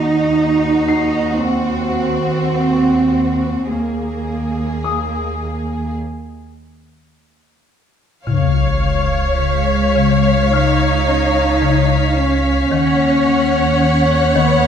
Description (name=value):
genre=cinematic, suspense film score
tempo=54 BPM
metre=4/4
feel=straight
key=unclear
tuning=A4 = 439 Hz
part: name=rich studio violin section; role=melody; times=0.0-14.7 s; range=Gb4 to Gb5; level=-24 LUFS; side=left 1 dB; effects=none
part: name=warm symphonic cello section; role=bass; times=0.0-14.7 s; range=Ab3 to Eb4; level=-18 LUFS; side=right 2 dB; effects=none
part: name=warm symphonic double bass section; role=bass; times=0.0-14.7 s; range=Db2 to Eb2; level=-20 LUFS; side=right 3 dB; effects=none
part: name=concert harp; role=texture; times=0.9-14.7 s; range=Eb6 to C7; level=-26 LUFS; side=left 7 dB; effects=none
part: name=warm symphonic violin section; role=second line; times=8.3-14.7 s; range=Db5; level=-21 LUFS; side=left 2 dB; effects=none
part: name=rich symphonic viola section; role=accompaniment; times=8.3-14.7 s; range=Db5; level=-21 LUFS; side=left 1 dB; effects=none
part: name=marimba with medium mallets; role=riff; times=8.3-14.7 s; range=Db3 to Db4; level=-19 LUFS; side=left 7 dB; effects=none
part: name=sub drop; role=sound effects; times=8.3-12.7 s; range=none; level=-21 LUFS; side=equal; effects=none
part: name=rich symphonic violin section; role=texture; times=8.3-14.7 s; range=F6 to Cb7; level=-28 LUFS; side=left 3 dB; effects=none
room=moderate scoring stage reverb, RT60 1.6 s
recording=dark, warm production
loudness=-14 LUFS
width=side -8 dB against mid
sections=0.0-8.3 A section; 8.3-14.7 B section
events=break 6.0-8.3; impact 8.3-12.7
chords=0.0 Ebm; 3.7 Abadd9/Eb; 8.3 Db; 12.7 Ebm7